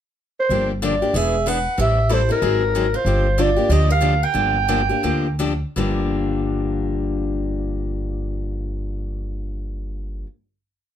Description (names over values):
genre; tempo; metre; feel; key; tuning
acoustic string swing (jazz manouche); 160-189 BPM; 4/4; swing 60% on 8ths; G minor; A4 = 441 Hz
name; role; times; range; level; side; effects
growling clarinet; melody; 0.4-5.4 s; Bb4 to G5; -20 LUFS; right 1 dB; none
picked steel-string acoustic guitar; accompaniment; 0.5-10.3 s; G2 to A4; -24 LUFS; left 4 dB; none
upright bass; bass; 0.5-10.2 s; E1 to D2; -22 LUFS; equal; none
picked steel-string acoustic guitar; second line; 0.8-5.4 s; Eb4 to B4; -28 LUFS; right 7 dB; none
room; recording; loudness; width
light reverb; none; -18 LUFS; side -10 dB against mid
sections
0.0-0.5 pickup bar; 0.5-5.8 A section; 5.8-8.8 final chord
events
slowing down 3.0-5.8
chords
0.0 N.C.; 0.5 Gm7; 1.1 E7; 1.8 Am7; 2.4 Ab9; 3.0 Gm7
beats
0.19 | 0.51 0.82 1.14 1.46 | 1.78 2.10 2.41 2.73 | 3.05 3.37 3.69 4.02 | 4.35 4.69 5.04 5.39 | 5.76 6.14 6.51 6.89 | 7.26 7.63 8.01 8.38